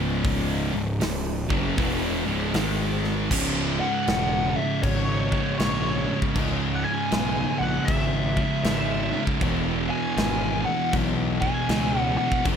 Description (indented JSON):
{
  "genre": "stoner and doom metal",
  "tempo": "79 BPM",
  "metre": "4/4",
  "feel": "swing 64% on 8ths",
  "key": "C# minor",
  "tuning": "A4 = 440 Hz",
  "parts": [
    { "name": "distorted electric guitar", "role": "riff", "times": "0.0-12.6 s", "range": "C#2 to G#3", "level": "-32 LUFS", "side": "equal", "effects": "distortion" },
    { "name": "thick fuzz guitar", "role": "riff", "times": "0.0-12.6 s", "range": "C#2 to G#3", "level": "-29 LUFS", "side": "left 11 dB", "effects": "distortion" },
    { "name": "thick fuzz guitar", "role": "riff", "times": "0.0-12.6 s", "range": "C#2 to G#3", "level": "-29 LUFS", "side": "right 9 dB", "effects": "distortion" },
    { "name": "fuzz picked electric bass", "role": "bass", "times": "0.0-12.6 s", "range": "C#1 to C#2", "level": "-29 LUFS", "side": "equal", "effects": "overdrive" },
    { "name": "big rock drum kit", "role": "drums", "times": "0.2-12.6 s", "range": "crash cymbal, hi-hat, kick drum, snare drum", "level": "-29 LUFS", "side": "equal", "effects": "none" },
    { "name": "fuzz lead guitar", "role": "melody", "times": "3.8-12.4 s", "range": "C#5 to G#5", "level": "-28 LUFS", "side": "equal", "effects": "wah, distortion, tape echo" }
  ],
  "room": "studio reverb",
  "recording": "none",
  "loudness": "-22 LUFS",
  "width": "side -7 dB against mid",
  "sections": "0.0-3.3 A section; 3.3-12.6 B section",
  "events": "none",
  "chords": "0.0 C#m; 2.5 G#5; 3.3 C#m; 9.4 E",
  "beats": "| 0.25 1.02 1.78 2.55 | 3.31 4.08 4.84 5.60 | 6.36 7.12 7.89 8.65 | 9.41 10.17 10.93 11.69 | 12.45"
}